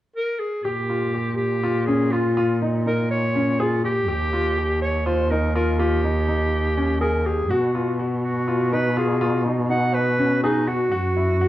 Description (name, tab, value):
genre	contemporary instrumental, chamber music in an uneven meter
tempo	245 BPM (eighths)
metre	7/8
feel	straight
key	unclear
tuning	A4 = 440 Hz
part	clear clarinet	melody	0.2-11.5 s	D#4 to F#5	-24 LUFS	right 1 dB	none
part	clear grand piano	arpeggios	0.7-11.5 s	Db4 to Ab4	-25 LUFS	left 2 dB	none
part	muted cello	bass	0.7-11.5 s	Eb2 to B2	-23 LUFS	equal	none
room	light reverb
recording	dark, warm production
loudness	-19 LUFS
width	side -14 dB against mid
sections	0.7-11.5 A section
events	none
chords	0.0 N.C.; 0.7 Bb5; 4.1 Eb; 7.5 B; 10.9 Gb5